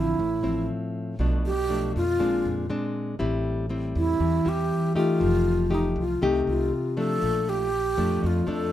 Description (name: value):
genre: bossa nova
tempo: 120 BPM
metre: 4/4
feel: straight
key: unclear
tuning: A4 = 441 Hz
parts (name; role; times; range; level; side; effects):
- breathy wooden-headed alto flute; melody; 0.0-8.7 s; Eb4 to A4; -26 LUFS; right 1 dB; none
- nylon-string guitar; accompaniment; 0.0-8.7 s; F2 to G4; -26 LUFS; left 2 dB; none
- upright bass; bass; 0.0-8.7 s; F1 to F2; -29 LUFS; equal; none
room: light reverb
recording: minimal, uncompressed stereo recording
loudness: -23 LUFS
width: side -12 dB against mid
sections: 0.0-8.7 A section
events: alto flute solo 0.0-8.7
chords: 0.0 Dm9; 1.2 Bm7b5; 2.2 Bb9; 3.2 Am7; 5.2 F9; 7.2 Bbmaj7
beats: 0.19 0.69 | 1.19 1.70 2.20 2.70 | 3.20 3.70 4.21 4.71 | 5.21 5.71 6.21 6.71 | 7.22 7.72 8.22